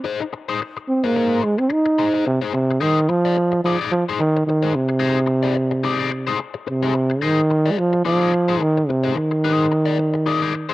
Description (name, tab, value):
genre	funk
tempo	109 BPM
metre	4/4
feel	swing 56% on 16ths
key	F dorian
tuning	A4 = 441 Hz
part	crunchy overdriven guitar	accompaniment	0.0-10.7 s	Eb4 to D5	-24 LUFS	left 6 dB	wah, spring reverb
part	dark trombone	melody	0.9-10.7 s	C3 to Eb4	-18 LUFS	right 1 dB	none
room	light reverb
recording	dry, close 1970s-style studio recording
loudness	-17 LUFS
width	side -17 dB against mid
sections	0.0-2.3 A section; 2.3-10.7 B section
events	trombone solo 0.0-2.3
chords	0.0 Ab; 2.3 Fm7 (rootless)